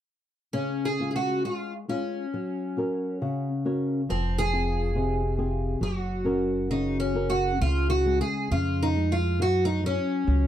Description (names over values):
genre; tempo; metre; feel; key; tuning
fado-style ballad; 68 BPM; 2/4; rubato; Db major; A4 = 439 Hz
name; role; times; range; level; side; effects
picked twelve-string acoustic guitar; melody; 0.5-10.5 s; C4 to Ab4; -28 LUFS; equal; none
flamenco guitar; accompaniment; 0.5-10.5 s; C3 to Gb5; -29 LUFS; left 1 dB; none
upright bass; bass; 4.1-10.5 s; F1 to Gb2; -27 LUFS; right 1 dB; none
room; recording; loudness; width
little or no reverb; dry, close 1970s-style studio recording; -24 LUFS; side -11 dB against mid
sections
0.5-7.6 A section; 7.6-10.5 B section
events
nylon-string guitar fill 2.8-4.1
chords
0.5 Db; 2.3 Gb; 4.1 Fm; 5.8 Gb; 7.6 Db; 9.4 Gb5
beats
| 0.55 1.46 | 2.34 3.22 | 4.10 4.96 | 5.82 6.70 | 7.61 8.51 | 9.40 10.27